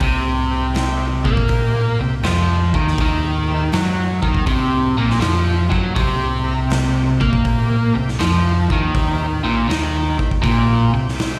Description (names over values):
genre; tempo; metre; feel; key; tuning
blues rock power trio and southern rock; 81 BPM; 4/4; swing 67% on 8ths; C mixolydian; A4 = 437 Hz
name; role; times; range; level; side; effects
overdriven tonewheel organ; sustained chords; 0.0-11.4 s; G4 to Bb5; -34 LUFS; equal; slow rotary speaker
overdriven electric guitar; riff; 0.0-11.1 s; Bb2 to Bb3; -21 LUFS; equal; slapback echo
picked electric bass; bass; 0.0-11.1 s; Bb1 to Bb2; -23 LUFS; equal; none
big rock drum kit; drums; 0.0-11.4 s; hi-hat, kick drum, snare drum; -25 LUFS; equal; none
room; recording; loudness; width
small room ambience; live gig heard through the venue's PA, recital hall reverb; -18 LUFS; mono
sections
0.0-11.4 A section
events
tonewheel organ fill 4.5-6.0, 10.8-11.4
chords
0.0 C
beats
| 0.01 0.75 1.50 2.24 | 2.98 3.73 4.47 5.21 | 5.96 6.70 7.45 8.19 | 8.93 9.68 10.42 11.17